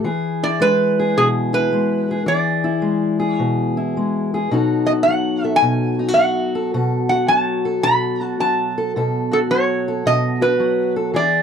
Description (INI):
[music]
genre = acoustic country blues, solo or duo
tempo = 108 BPM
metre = 4/4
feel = swing 67% on 8ths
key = unclear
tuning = A4 = 440 Hz
[part]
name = fingerpicked steel-string acoustic guitar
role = accompaniment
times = 0.0-11.4 s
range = B2 to A4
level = -19 LUFS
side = left 2 dB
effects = none
[part]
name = metal-body resonator slide guitar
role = melody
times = 0.4-11.4 s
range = G#4 to B5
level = -18 LUFS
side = right 2 dB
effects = none
[sound]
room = light reverb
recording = dry, close 1970s-style studio recording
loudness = -16 LUFS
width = side -7 dB against mid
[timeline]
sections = 0.0-11.4 A section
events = none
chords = 0.1 E7; 4.5 B7